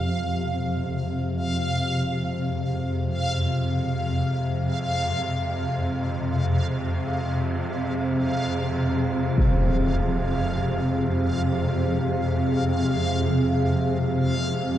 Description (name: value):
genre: dark ambient drone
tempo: free time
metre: none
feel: none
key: unclear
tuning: A4 = 440 Hz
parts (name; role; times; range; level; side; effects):
- deep dark ambient pad; sustained chords; 0.1-14.8 s; C4 to F5; -30 LUFS; right 2 dB; chorus, built-in reverb
- swarming drone; drone; 0.0-14.8 s; F2 to C3; -24 LUFS; equal; built-in reverb
- backwards swelling texture; texture; 0.0-14.8 s; F5; -32 LUFS; equal; built-in reverb
- impact; percussion; 9.4-9.6 s; none; -25 LUFS; equal; low-pass filter on sfx
room: moderate spring reverb, RT60 2.5 s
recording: none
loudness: -22 LUFS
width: side -12 dB against mid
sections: 0.0-14.8 A section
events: fade-in on ambient pad 0.0-14.8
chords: 0.0 Fm